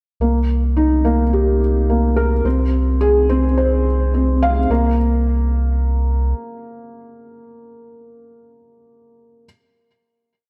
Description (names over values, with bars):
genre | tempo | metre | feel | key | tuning
piano and strings electronica | 107 BPM | 4/4 | straight | unclear | A4 = 439 Hz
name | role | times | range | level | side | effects
felt-muted upright piano | riff | 0.2-9.5 s | Bb3 to F5 | -21 LUFS | equal | tape echo
warm sub bass | bass | 0.2-6.3 s | C2 | -20 LUFS | equal | none
room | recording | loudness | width
moderate lush hall reverb, RT60 1.8 s, small room ambience | dark, warm production | -17 LUFS | mono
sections
0.2-4.7 build; 4.7-6.9 final chord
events
build-up 0.2-4.7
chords
0.2 Cm7; 2.5 Fm/C; 4.7 Bbsus2/C